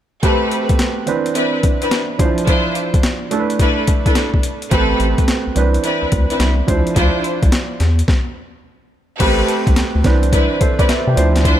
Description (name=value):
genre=R&B, new jack swing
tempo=107 BPM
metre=4/4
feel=swing 66% on 16ths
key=A minor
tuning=A4 = 435 Hz
part: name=warm grand piano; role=accompaniment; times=0.2-11.6 s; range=E3 to G5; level=-20 LUFS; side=right 4 dB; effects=none
part: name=warm studio string section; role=stabs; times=0.2-11.6 s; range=C4 to C5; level=-20 LUFS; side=left 2 dB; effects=digital delay
part: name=boom bap sampler-style drum kit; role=drums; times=0.2-11.6 s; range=crash cymbal, hi-hat, kick drum, snare drum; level=-17 LUFS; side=left 1 dB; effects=overdrive
part: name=round analog bass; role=bass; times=4.7-11.6 s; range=A1 to C3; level=-16 LUFS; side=equal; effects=none
room=light reverb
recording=none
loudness=-14 LUFS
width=side -11 dB against mid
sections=0.2-9.2 A section; 9.2-11.6 B section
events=stop 8.1-9.2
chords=0.2 Am9; 1.1 Cmaj9; 2.2 Dm9; 3.3 E7sus4; 4.7 Am9; 5.6 Cmaj9; 6.7 Dm9; 7.8 N.C.; 9.2 Am9; 10.0 Cmaj9